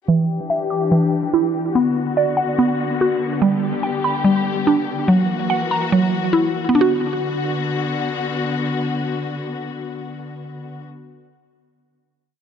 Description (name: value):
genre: hip hop, drill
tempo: 144 BPM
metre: 4/4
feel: half-time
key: B harmonic minor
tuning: A4 = 440 Hz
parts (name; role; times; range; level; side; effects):
- dark studio string section; sustained chords; 0.1-10.8 s; D3 to G4; -23 LUFS; left 4 dB; low-pass filter
- mallet-like synth pluck; arpeggios; 0.1-11.6 s; E3 to D6; -18 LUFS; right 1 dB; chorus, low-pass filter, digital delay
room: moderate lush hall reverb, RT60 2.7 s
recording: dark, warm production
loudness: -17 LUFS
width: side -8 dB against mid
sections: 0.1-6.7 breakdown; 6.7-10.1 final chord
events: filter sweep 0.1-6.7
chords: 0.1 Em7; 1.7 Bm; 3.4 G; 5.1 F#7; 6.7 Bm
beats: | 0.08 0.50 0.92 1.33 | 1.75 2.17 2.58 3.00 | 3.42 3.83 4.25 4.67 | 5.08 5.50 5.92 6.33 | 6.75 7.17 7.58 8.00 | 8.42 8.83 9.25 9.67